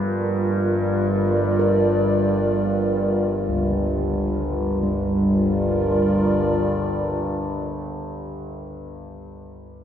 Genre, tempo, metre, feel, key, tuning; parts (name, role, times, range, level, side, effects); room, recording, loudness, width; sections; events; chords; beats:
dark ambient drone; free time; A4 = 442 Hz
dark analog pad; sustained chords; 0.0-8.7 s; G3 to D5; -22 LUFS; equal; chorus
overtone-sweeping drone; drone; 0.0-8.3 s; G1 to G2; -25 LUFS; left 1 dB; chorus, built-in reverb
gamelan-type bossed gongs; arpeggios; 1.6-8.9 s; C#2 to Bb4; -28 LUFS; right 1 dB; dub echo
wet spring reverb, RT60 2.5 s; echo-heavy mix, nothing above 10.9 kHz; -19 LUFS; side -9 dB against mid
0.0-4.8 A section; 4.8-8.5 B section
0.0 Gm
free time